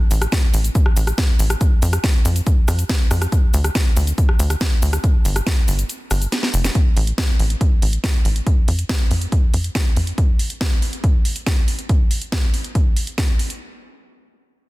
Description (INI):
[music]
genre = uplifting trance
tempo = 140 BPM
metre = 4/4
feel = straight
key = unclear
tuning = A4 = 440 Hz
[part]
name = tight sequencer bass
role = bass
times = 0.1-10.1 s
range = F1 to F2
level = -18 LUFS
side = equal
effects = sidechain pumping
[part]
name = techno drum kit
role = drums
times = 0.1-13.6 s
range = hi-hat, rim click, shaker, snare drum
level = -24 LUFS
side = equal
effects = none
[part]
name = electronic kick drum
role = drums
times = 0.3-13.3 s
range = none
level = -17 LUFS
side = equal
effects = none
[sound]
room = little or no reverb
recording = dense, heavily limited modern master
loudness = -16 LUFS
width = side -20 dB against mid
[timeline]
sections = 0.0-6.8 A section; 6.8-13.6 B section; 13.6-14.7 C section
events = drop 0.0-6.8; break 5.9-6.8; drum fill 6.3-6.8; filter sweep on analog synth bass 6.8-10.2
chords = none